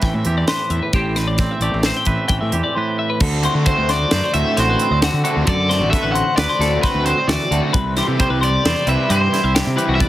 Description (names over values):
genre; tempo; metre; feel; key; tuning
math rock and midwest emo; 132 BPM; 5/4; straight; unclear; A4 = 440 Hz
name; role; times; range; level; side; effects
twangy electric guitar; accompaniment; 0.0-10.1 s; A2 to C5; -24 LUFS; right 4 dB; none
twelve-string electric guitar; arpeggios; 0.0-10.1 s; F#4 to G5; -24 LUFS; left 4 dB; spring reverb
fuzz fingered electric bass; bass; 0.0-10.1 s; A1 to D3; -20 LUFS; equal; overdrive
crisp fusion drum kit; drums; 0.0-10.1 s; crash cymbal, hi-hat, kick drum, snare drum; -21 LUFS; equal; none
overdriven semi-hollow guitar; riff; 3.4-10.1 s; D3 to F#4; -23 LUFS; left 1 dB; none
raw garage guitar; melody; 3.7-10.1 s; B4 to F#5; -20 LUFS; equal; overdrive, slapback echo
room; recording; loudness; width
light reverb; heavily compressed radio sound; -15 LUFS; side -14 dB against mid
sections
0.0-3.2 A section; 3.2-10.1 B section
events
none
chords
0.0 Am7; 3.2 D13; 7.7 Cmaj7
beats
0.03 0.48 | 0.93 1.39 1.84 2.29 2.75 | 3.20 3.65 4.11 4.56 5.01 | 5.47 5.92 6.37 6.83 7.28 | 7.73 8.18 8.64 9.09 9.54 | 10.00